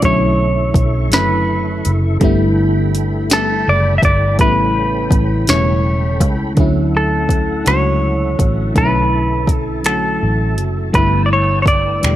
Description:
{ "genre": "slow six-eight R&B", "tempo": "55 BPM (dotted quarters)", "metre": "6/8", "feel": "straight", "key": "D major", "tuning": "A4 = 436 Hz", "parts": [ { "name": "FM electric piano with soft pad layer", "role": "accompaniment", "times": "0.0-12.2 s", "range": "B2 to G4", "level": "-19 LUFS", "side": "equal", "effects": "chorus" }, { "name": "tonewheel organ", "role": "sustained chords", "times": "0.0-12.2 s", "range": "C#4 to E6", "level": "-28 LUFS", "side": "right 1 dB", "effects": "chorus vibrato, slow rotary speaker" }, { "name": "vintage muted fingered electric bass", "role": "bass", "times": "0.0-12.2 s", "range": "E1 to D2", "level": "-18 LUFS", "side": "equal", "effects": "none" }, { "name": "smooth R&B drum kit", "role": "drums", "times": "0.0-12.2 s", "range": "finger snaps, hi-hat, kick drum, snare drum", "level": "-17 LUFS", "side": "equal", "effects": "overdrive" }, { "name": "semi-hollow electric guitar", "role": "melody", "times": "0.1-12.2 s", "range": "A4 to E5", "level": "-18 LUFS", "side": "equal", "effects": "slapback echo" } ], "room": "little or no reverb", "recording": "none", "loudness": "-12 LUFS", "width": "side -13 dB against mid", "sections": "0.0-6.6 A section; 6.6-12.2 B section", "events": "none", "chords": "0.0 Bm11; 2.2 G69; 4.4 A9; 6.6 Dmaj9; 8.8 Bm11; 10.9 G69", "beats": "| 0.03 1.12 | 2.21 3.30 | 4.39 5.48 | 6.57 7.67 | 8.76 9.85 | 10.94 12.03" }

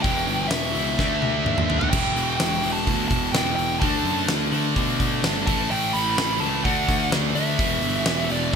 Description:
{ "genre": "hard rock", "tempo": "127 BPM", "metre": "4/4", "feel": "straight", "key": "E minor", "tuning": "A4 = 440 Hz", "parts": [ { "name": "dark smooth lead guitar", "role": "melody", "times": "0.0-8.5 s", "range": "D5 to B5", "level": "-27 LUFS", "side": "equal", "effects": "overdrive" }, { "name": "crunchy overdriven guitar", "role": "riff", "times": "0.0-8.6 s", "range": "E2 to D4", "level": "-30 LUFS", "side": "left 13 dB", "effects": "none" }, { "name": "distorted electric guitar", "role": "riff", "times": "0.0-8.6 s", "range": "E2 to D4", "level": "-28 LUFS", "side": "left 1 dB", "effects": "overdrive" }, { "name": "high-gain distorted guitar", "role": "riff", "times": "0.0-8.6 s", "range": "E2 to D4", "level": "-28 LUFS", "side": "right 13 dB", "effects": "distortion" }, { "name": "fuzz picked electric bass", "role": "bass", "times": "0.0-8.6 s", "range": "E1 to B2", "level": "-28 LUFS", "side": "equal", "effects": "overdrive" }, { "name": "huge arena drum kit", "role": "drums", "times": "0.0-8.6 s", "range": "crash cymbal, hi-hat, kick drum, snare drum, toms", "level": "-26 LUFS", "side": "equal", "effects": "gated reverb" } ], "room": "moderate plate reverb, RT60 1.9 s, studio reverb", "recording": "bright 1980s-style digital production", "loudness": "-20 LUFS", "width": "side -6 dB against mid", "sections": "0.0-8.6 A section", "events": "drum fill 1.0-1.9", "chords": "0.0 Em; 1.0 D5; 1.9 Em; 3.8 D; 5.5 A; 6.7 D; 7.6 Em", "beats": "| 0.04 0.51 0.98 1.46 | 1.93 2.40 2.87 3.35 | 3.82 4.29 4.76 5.24 | 5.71 6.18 6.65 7.12 | 7.60 8.07 8.54" }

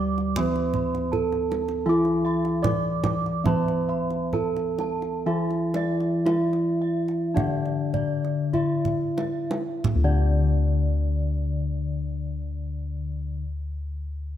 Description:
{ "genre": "Javanese gamelan", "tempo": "44-80 BPM", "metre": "4/4", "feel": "straight", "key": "D slendro", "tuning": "A4 = 438 Hz", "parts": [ { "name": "gamelan-type bronze metallophone", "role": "melody", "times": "0.0-13.4 s", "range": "D4 to D5", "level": "-28 LUFS", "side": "right 2 dB", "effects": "none" }, { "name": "gamelan-type bronze metallophone", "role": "accompaniment", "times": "0.0-13.4 s", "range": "D3 to C4-40c", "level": "-29 LUFS", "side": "left 2 dB", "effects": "none" }, { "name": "gamelan-type bronze metallophone", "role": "arpeggios", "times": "0.0-13.4 s", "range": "D5 to D6", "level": "-36 LUFS", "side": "right 5 dB", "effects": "none" }, { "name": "gamelan-type bossed gongs", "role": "bass", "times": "0.0-13.3 s", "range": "D2 to G4-20c", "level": "-27 LUFS", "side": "left 1 dB", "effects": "none" }, { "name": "kendang", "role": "percussion", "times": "0.2-10.5 s", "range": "none", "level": "-30 LUFS", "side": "right 3 dB", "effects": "none" }, { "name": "gamelan-type bossed gongs", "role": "arpeggios", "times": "1.9-13.4 s", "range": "D5 to D6", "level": "-36 LUFS", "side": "left 5 dB", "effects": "none" } ], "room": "light reverb", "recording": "close, detailed microphones", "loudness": "-23 LUFS", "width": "side -10 dB against mid", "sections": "0.0-9.8 A section; 9.8-14.4 B section", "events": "slowing down 1.9-9.8; drum fill 8.5-9.8", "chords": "none", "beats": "0.36 1.11 | 1.86 2.63 3.45 4.33 | 5.26 6.27 7.35 8.54 | 9.84 11.20 12.56" }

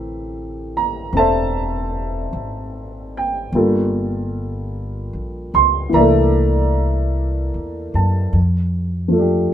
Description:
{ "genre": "jazz ballad", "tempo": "50 BPM", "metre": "4/4", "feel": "swing 67% on 8ths", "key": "unclear", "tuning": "A4 = 443 Hz", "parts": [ { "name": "warm upright piano", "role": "accompaniment", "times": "0.0-9.5 s", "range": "E3 to C6", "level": "-18 LUFS", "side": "right 1 dB", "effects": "none" }, { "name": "upright bass", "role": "bass", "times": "0.0-9.5 s", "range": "E1 to Gb2", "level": "-21 LUFS", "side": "equal", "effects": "none" } ], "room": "moderate studio reverb, RT60 0.6 s", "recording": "band playing live in one room", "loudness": "-16 LUFS", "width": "side -10 dB against mid", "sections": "0.0-9.5 A section", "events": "none", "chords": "0.0 Am7; 3.5 Gm9; 5.9 C13; 8.3 F69", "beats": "1.14 2.34 | 3.54 4.74 5.94 7.14 | 8.34 9.54" }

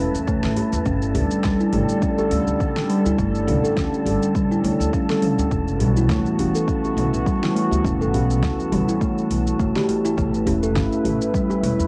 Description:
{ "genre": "organic downtempo", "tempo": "103 BPM", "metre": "4/4", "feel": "swing 56% on 16ths", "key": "unclear", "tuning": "A4 = 439 Hz", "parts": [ { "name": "warbly tape-like pad", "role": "sustained chords", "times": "0.0-11.9 s", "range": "D3 to B4", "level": "-27 LUFS", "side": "equal", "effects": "chorus, built-in reverb, sidechain pumping, cassette tape" }, { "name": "steel tongue drum", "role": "arpeggios", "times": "0.0-11.8 s", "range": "G3 to A4", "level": "-25 LUFS", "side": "equal", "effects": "cassette tape, analog delay" }, { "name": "upright bass", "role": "bass", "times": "0.0-11.9 s", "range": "E1 to E2", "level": "-26 LUFS", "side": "equal", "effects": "tube saturation" }, { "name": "wind-like tuned noise texture", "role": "texture", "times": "0.0-11.9 s", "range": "E4 to A5", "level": "-39 LUFS", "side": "equal", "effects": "built-in reverb, cassette tape" }, { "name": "deep house drum kit", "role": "drums", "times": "0.1-11.9 s", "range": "hi-hat, shaker, snare drum, toms", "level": "-32 LUFS", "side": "equal", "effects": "overdrive, cassette tape" }, { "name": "electronic kick drum", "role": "drums", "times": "0.3-11.5 s", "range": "none", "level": "-28 LUFS", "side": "equal", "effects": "overdrive, cassette tape" }, { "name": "djembe", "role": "percussion", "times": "0.6-11.6 s", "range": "none", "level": "-36 LUFS", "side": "equal", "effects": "none" } ], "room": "wet booth ambience, RT60 0.2 s", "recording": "home recording on cassette", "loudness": "-21 LUFS", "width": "mono", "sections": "0.0-11.9 A section", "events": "none", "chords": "0.0 A7; 0.9 Gsus2; 5.5 Em; 10.2 A7", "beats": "0.27 | 0.86 1.44 2.02 2.60 | 3.19 3.77 4.35 4.93 | 5.52 6.10 6.68 7.26 | 7.85 8.43 9.01 9.59 | 10.18 10.76 11.34" }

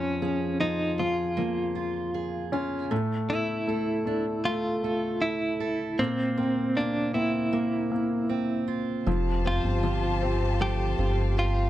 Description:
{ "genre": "pop", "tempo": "78 BPM", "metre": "4/4", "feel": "straight", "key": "F major", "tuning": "A4 = 439 Hz", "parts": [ { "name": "direct-recorded clean electric guitar", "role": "melody", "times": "0.0-11.7 s", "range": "C4 to G4", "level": "-29 LUFS", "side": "equal", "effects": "tremolo" }, { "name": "clear grand piano", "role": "accompaniment", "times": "0.0-11.7 s", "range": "F3 to Db4", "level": "-30 LUFS", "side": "left 2 dB", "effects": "none" }, { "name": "fingerpicked steel-string acoustic guitar", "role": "arpeggios", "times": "0.0-11.7 s", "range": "F2 to A4", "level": "-34 LUFS", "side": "right 6 dB", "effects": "none" }, { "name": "warm symphonic string section", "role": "sustained chords", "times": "9.1-11.7 s", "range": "G4 to A5", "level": "-34 LUFS", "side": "left 3 dB", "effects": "none" }, { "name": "chorused synth bass", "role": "bass", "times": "9.1-11.7 s", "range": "F1 to G1", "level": "-26 LUFS", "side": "equal", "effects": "none" } ], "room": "small room reverb", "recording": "dry, close 1970s-style studio recording", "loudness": "-25 LUFS", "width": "side -13 dB against mid", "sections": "0.0-11.7 A section", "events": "none", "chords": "0.0 Db6/F; 2.9 A5; 6.0 Bbsus2; 9.1 Fadd9", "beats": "0.60 1.37 2.14 | 2.91 3.68 4.45 5.22 | 5.99 6.76 7.53 8.30 | 9.07 9.84 10.61 11.37" }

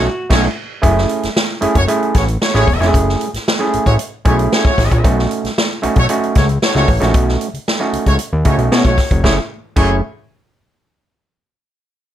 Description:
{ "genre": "funk", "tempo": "114 BPM", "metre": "4/4", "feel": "straight", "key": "F# dorian", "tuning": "A4 = 439 Hz", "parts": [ { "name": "warm horn section", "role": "second line", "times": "0.0-10.0 s", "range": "A3 to C#5", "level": "-20 LUFS", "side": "equal", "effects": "none" }, { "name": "overdriven clav", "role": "stabs", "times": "0.0-10.0 s", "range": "A3 to G#4", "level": "-17 LUFS", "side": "right 3 dB", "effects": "none" }, { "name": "fat analog bass", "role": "bass", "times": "0.0-10.0 s", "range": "E1 to B2", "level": "-16 LUFS", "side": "equal", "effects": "none" }, { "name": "swinging big-band drum kit", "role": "drums", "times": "0.3-9.9 s", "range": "crash cymbal, hi-hat, kick drum, snare drum", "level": "-16 LUFS", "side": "equal", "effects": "none" } ], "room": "light reverb", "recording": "none", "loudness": "-12 LUFS", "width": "side -11 dB against mid", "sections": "0.8-9.2 A section; 9.2-11.4 B section", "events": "band accent 0.0-0.8", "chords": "0.0 B9; 0.8 F#m7; 5.0 B9; 9.2 F#m7", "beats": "0.30 | 0.83 1.35 1.88 2.40 | 2.93 3.46 3.98 4.51 | 5.04 5.56 6.09 6.61 | 7.14 7.67 8.19 8.72 | 9.25 9.77" }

